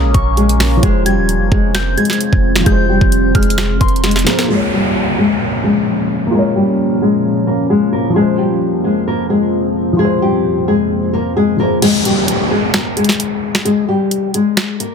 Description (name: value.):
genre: hip hop, trap.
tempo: 131 BPM.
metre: 4/4.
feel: half-time.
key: Bb dorian.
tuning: A4 = 440 Hz.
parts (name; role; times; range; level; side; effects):
nylon-string guitar; melody; 0.0-14.9 s; G3 to Bb4; -16 LUFS; left 4 dB; low-pass filter, tape echo.
soft synth bell; second line; 0.0-4.0 s; C6 to Ab6; -22 LUFS; left 2 dB; chorus, tape echo.
dark concert grand piano; accompaniment; 0.0-11.8 s; F3 to Db5; -21 LUFS; equal; low-pass filter.
deep dark ambient pad; sustained chords; 0.0-11.8 s; F2 to Db4; -20 LUFS; right 2 dB; chorus, built-in reverb, low-pass filter.
clean 808-style bass; bass; 0.0-4.2 s; Eb1 to Bb1; -16 LUFS; right 1 dB; none.
trap drum kit; drums; 0.1-4.5, 11.8-14.9 s; crash cymbal, finger snaps, hi-hat, kick drum, snare drum; -16 LUFS; right 1 dB; none.
downlifter; sound effects; 4.5-8.2, 11.8-14.9 s; none; -21 LUFS; equal; none.
room: light reverb.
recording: dense, heavily limited modern master.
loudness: -12 LUFS.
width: side -6 dB against mid.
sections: 0.0-4.5 A section; 4.5-11.8 B section; 11.8-14.9 C section.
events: drum fill 4.0-4.5; filter sweep 4.5-11.8; kick muted 11.8-14.9.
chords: 0.0 Bbm7; 0.8 Fm; 4.5 Bbm7; 8.2 Fm; 11.8 Gm.